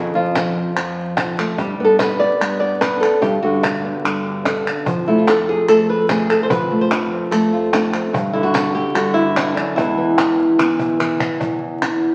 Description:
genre	flamenco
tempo	147 BPM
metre	4/4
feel	straight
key	unclear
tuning	A4 = 440 Hz
part	flamenco guitar	melody	0.0-12.1 s	E2 to D5	-19 LUFS	equal	none
part	fretless electric bass	bass	0.0-11.2 s	E2 to G2	-30 LUFS	equal	none
part	cajon	percussion	0.4-12.0 s	none	-27 LUFS	equal	none
part	palmas hand claps	percussion	0.4-12.0 s	none	-27 LUFS	equal	none
room	wet large studio reverb, RT60 1.4 s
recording	very old 78 rpm record, vinyl crackle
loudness	-18 LUFS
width	mono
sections	0.0-11.4 A section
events	drum fill 10.6-11.4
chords	0.0 F5; 1.6 Gmaj7; 4.9 F; 8.1 G5; 9.8 E; 11.4 E5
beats	0.35 0.76 1.17 | 1.58 1.99 2.40 2.81 | 3.22 3.63 4.04 4.45 | 4.86 5.27 5.68 6.09 | 6.50 6.91 7.32 7.72 | 8.13 8.54 8.95 9.36 | 9.77 10.18 10.59 11.00 | 11.41 11.82

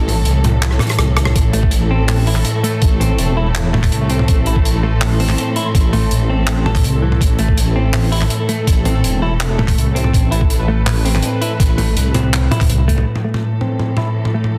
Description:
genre	half-time drum and bass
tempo	164 BPM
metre	4/4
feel	half-time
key	A minor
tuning	A4 = 441 Hz
part	warm symphonic string section	sustained chords	0.0-14.6 s	A2 to A4	-27 LUFS	equal	sidechain pumping
part	deep soft wobble bass	bass	0.0-13.0 s	E1 to C2	-18 LUFS	equal	chorus
part	modern studio drum kit	drums	0.1-14.5 s	handclaps, hi-hat, rim click, toms	-22 LUFS	equal	soft clipping on snare
part	electronic kick drum	drums	1.4-13.0 s	none	-18 LUFS	equal	none
part	pulsing gated texture	texture	1.4-13.1 s	A3 to C6	-32 LUFS	equal	chorus, built-in reverb
part	clean electric guitar	arpeggios	1.5-14.5 s	E3 to A4	-25 LUFS	equal	low-pass filter, delay
room	light reverb, small room ambience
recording	dense, heavily limited modern master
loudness	-15 LUFS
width	mono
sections	0.0-13.1 A section; 13.1-14.6 B section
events	drop 0.0-13.1; kick drops out 0.6-1.4; drum fill 0.6-1.4; filter sweep on clean electric guitar 13.1-14.6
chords	0.0 A5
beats	0.26 0.62 0.99 | 1.35 1.72 2.09 2.45 | 2.82 3.18 3.55 3.92 | 4.28 4.65 5.01 5.38 | 5.75 6.11 6.48 6.84 | 7.21 7.57 7.94 8.31 | 8.67 9.04 9.40 9.77 | 10.13 10.50 10.87 11.23 | 11.60 11.96 12.33 12.70 | 13.06 13.43 13.79 14.16 | 14.53

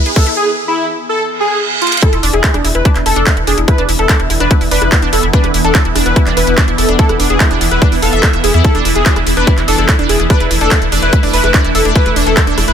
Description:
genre	psychedelic trance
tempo	145 BPM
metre	4/4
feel	straight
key	E major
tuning	A4 = 439 Hz
part	swarming drone	sustained chords	0.1-12.7 s	E3 to B3	-20 LUFS	right 1 dB	built-in reverb, phaser, sidechain pumping
part	wide unison pluck	riff	0.0-12.7 s	D4 to F5	-18 LUFS	right 1 dB	auto-pan, sidechain pumping, dub echo
part	riser and reverse cymbal	sound effects	0.0-2.0 s	none	-18 LUFS	right 4 dB	none
part	drum and bass drum kit	drums	0.1-12.7 s	handclaps, hi-hat, rim click	-18 LUFS	equal	overdrive
part	wide unison lead	melody	0.2-12.7 s	E4 to B4	-16 LUFS	equal	phaser, sidechain pumping, dub echo
part	electronic kick drum	drums	0.2-12.5 s	none	-10 LUFS	equal	overdrive
part	round analog bass	bass	2.1-12.7 s	E1 to E2	-16 LUFS	equal	none
room	digital ambience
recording	none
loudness	-9 LUFS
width	side -8 dB against mid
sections	0.0-2.0 A section; 2.0-12.7 B section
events	build-up 0.0-2.0; drum fill 0.0-0.4, 1.8; riser 0.0-0.4; break 0.4-2.0; reverse cymbal 1.4-2.0; drop 2.0-12.7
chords	0.0 E5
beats	| 0.37 0.78 1.20 1.61 | 2.02 2.44 2.85 3.27 | 3.68 4.09 4.51 4.92 | 5.33 5.75 6.16 6.58 | 6.99 7.40 7.82 8.23 | 8.64 9.06 9.47 9.89 | 10.30 10.71 11.13 11.54 | 11.96 12.37

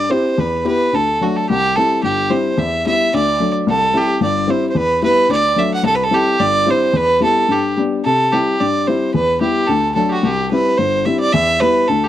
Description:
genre	celtic folk, Celtic reel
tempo	219 BPM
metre	4/4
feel	swing 54% on 8ths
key	unclear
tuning	A4 = 441 Hz
part	clear fiddle	melody	0.0-12.1 s	F#4 to F#5	-16 LUFS	right 2 dB	none
part	warm upright piano	accompaniment	0.0-12.1 s	G1 to G4	-17 LUFS	left 3 dB	none
room	small room ambience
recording	dry, close 1970s-style studio recording, faint mains hum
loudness	-13 LUFS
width	side -12 dB against mid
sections	0.0-8.1 A section; 8.1-12.1 A section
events	none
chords	0.4 Em; 0.9 D; 1.5 C; 2.6 Em; 3.1 D; 3.7 C; 4.8 Em; 5.3 D; 5.9 C; 7.0 Em; 7.5 G; 8.1 C; 9.2 Em; 9.7 D; 10.2 C; 11.3 Em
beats	0.10 | 0.38 0.65 0.93 1.20 | 1.48 1.75 2.02 2.30 | 2.57 2.85 3.12 3.40 | 3.67 3.94 4.22 4.49 | 4.76 5.04 5.31 5.59 | 5.86 6.13 6.41 6.68 | 6.96 7.23 7.50 7.78 | 8.05 8.33 8.60 8.88 | 9.15 9.43 9.70 9.97 | 10.25 10.52 10.80 11.07 | 11.35 11.62 11.90

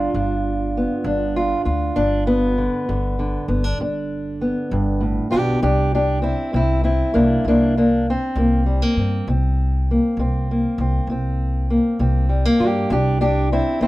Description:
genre	acoustic country blues, solo or duo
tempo	66 BPM (dotted quarters)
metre	12/8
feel	straight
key	unclear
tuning	A4 = 440 Hz
part	fingerpicked steel-string acoustic guitar	melody	0.0-13.9 s	G2 to G4	-19 LUFS	equal	plate reverb
part	upright bass	bass	0.0-13.9 s	G1 to G2	-21 LUFS	equal	none
room	light reverb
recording	none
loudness	-17 LUFS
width	side -18 dB against mid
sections	0.0-13.9 A section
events	none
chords	0.0 G7; 5.6 C7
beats	0.16 1.07 | 1.98 2.89 3.81 4.72 | 5.63 6.54 7.45 8.36 | 9.27 10.18 11.09 12.00 | 12.90 13.81

